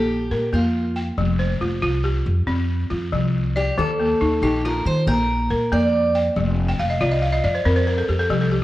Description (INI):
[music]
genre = west african traditional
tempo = 92 BPM (dotted quarters)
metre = 12/8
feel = straight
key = F mixolydian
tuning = A4 = 440 Hz
[part]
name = picked steel-string acoustic guitar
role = melody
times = 0.0-6.2 s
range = F4 to D5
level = -23 LUFS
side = right 1 dB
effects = none
[part]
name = balafon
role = arpeggios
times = 0.0-8.6 s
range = Eb3 to G5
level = -22 LUFS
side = left 1 dB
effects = none
[part]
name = upright bass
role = bass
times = 0.0-8.6 s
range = F1 to Eb3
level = -22 LUFS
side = equal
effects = none
[sound]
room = moderate recital hall reverb, RT60 1.4 s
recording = worn, warbling old tape, cassette tape, warbly pitch drift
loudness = -18 LUFS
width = side -16 dB against mid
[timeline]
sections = 0.0-8.6 A section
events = balafon fill 6.7-8.6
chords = 0.0 Bb5; 1.2 F5; 3.8 Eb5; 5.1 Bb; 6.4 F5